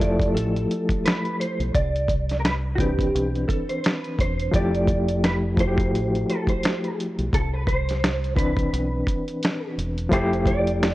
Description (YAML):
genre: lo-fi hip hop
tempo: 86 BPM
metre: 4/4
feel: swing 57% on 16ths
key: F lydian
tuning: A4 = 441 Hz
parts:
  - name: mellow electric guitar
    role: melody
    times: 0.0-10.9 s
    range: Gb4 to D5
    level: -28 LUFS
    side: right 2 dB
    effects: ensemble chorus, analog delay
  - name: overdriven reed electric piano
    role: accompaniment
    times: 0.0-10.9 s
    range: E3 to B4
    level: -25 LUFS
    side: left 1 dB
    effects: fast tremolo
  - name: deep dub fingered electric bass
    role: bass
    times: 0.0-10.9 s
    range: E1 to C2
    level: -26 LUFS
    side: equal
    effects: none
  - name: dusty soul sampler-style drum kit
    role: drums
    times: 0.0-10.9 s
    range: hi-hat, kick drum, snare drum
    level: -24 LUFS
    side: equal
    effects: overdrive
room: little or no reverb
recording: worn, warbling old tape, cassette tape, warbly pitch drift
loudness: -21 LUFS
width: side -17 dB against mid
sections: 0.0-10.9 A section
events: none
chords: 0.0 Fmaj9; 1.7 Cmaj9; 4.5 Fmaj9; 7.3 Cmaj9; 10.1 Fmaj9